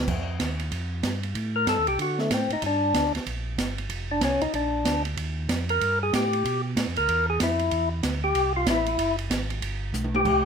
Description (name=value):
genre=soul jazz organ trio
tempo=189 BPM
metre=4/4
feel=swing 62% on 8ths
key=unclear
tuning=A4 = 440 Hz
part: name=mellow tonewheel organ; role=bass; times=0.0-10.5 s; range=F1 to D3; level=-29 LUFS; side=right 1 dB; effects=chorus vibrato, slow rotary speaker
part: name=open jazz drum kit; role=drums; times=0.1-10.3 s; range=crash cymbal, hi-hat, kick drum, ride cymbal, snare drum, toms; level=-29 LUFS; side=right 3 dB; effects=none
part: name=percussive tonewheel organ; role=melody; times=1.6-10.5 s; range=A3 to Bb4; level=-24 LUFS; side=left 2 dB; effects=slow rotary speaker, overdrive
room=moderate studio reverb, RT60 0.8 s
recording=minimal, uncompressed stereo recording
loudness=-23 LUFS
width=side -6 dB against mid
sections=0.1-10.3 A section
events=tonewheel organ solo 0.0-10.3; drum fill 9.9-10.3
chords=0.1 Ebadd9; 1.4 Am7b5; 2.0 D5; 2.6 Gm; 3.9 F5; 4.5 Bb; 5.2 Ebadd9; 6.4 Bm7b5; 7.1 E; 7.7 Am7; 9.0 Gbsus2; 9.6 G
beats=| 0.09 0.40 0.72 1.04 | 1.36 1.68 1.99 2.31 | 2.63 2.95 3.27 3.58 | 3.90 4.22 4.54 4.85 | 5.17 5.49 5.81 6.12 | 6.44 6.76 7.08 7.39 | 7.71 8.03 8.35 8.66 | 8.98 9.30 9.62 9.93 | 10.25